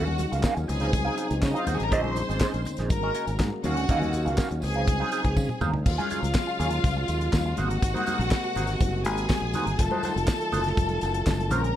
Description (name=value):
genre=disco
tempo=122 BPM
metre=4/4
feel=straight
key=Eb dorian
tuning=A4 = 439 Hz
part: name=clear studio string section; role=second line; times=0.0-11.8 s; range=Db4 to C6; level=-30 LUFS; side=left 1 dB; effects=none
part: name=mellow electric guitar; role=accompaniment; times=0.0-11.7 s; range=Gb3 to F5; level=-31 LUFS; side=right 4 dB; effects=wah, phaser
part: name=dark French horn section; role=sustained chords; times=0.0-11.8 s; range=C3 to Gb4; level=-34 LUFS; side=left 1 dB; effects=none
part: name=fingered electric bass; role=bass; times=0.0-11.7 s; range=F1 to Db3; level=-28 LUFS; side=equal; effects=none
part: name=congas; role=percussion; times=0.1-11.6 s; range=none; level=-36 LUFS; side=left 5 dB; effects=none
part: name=damped 70s drum kit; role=drums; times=0.2-11.8 s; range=crash cymbal, handclaps, hi-hat, kick drum, snare drum, toms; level=-27 LUFS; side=equal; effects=none
part: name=tambourine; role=percussion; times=0.2-11.6 s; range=none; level=-47 LUFS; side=right 6 dB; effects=none
room=light reverb, small room reverb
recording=dark, warm production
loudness=-23 LUFS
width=side -11 dB against mid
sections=0.0-5.9 A section; 5.9-11.8 B section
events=drum fill 5.4-5.9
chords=0.0 Ebm9; 0.7 Dbmaj9; 1.9 Bbm11; 2.9 Ab9sus4; 3.6 Ebm9; 4.6 Dbmaj9; 5.9 Ebm11; 7.6 Ab9; 9.8 F7b9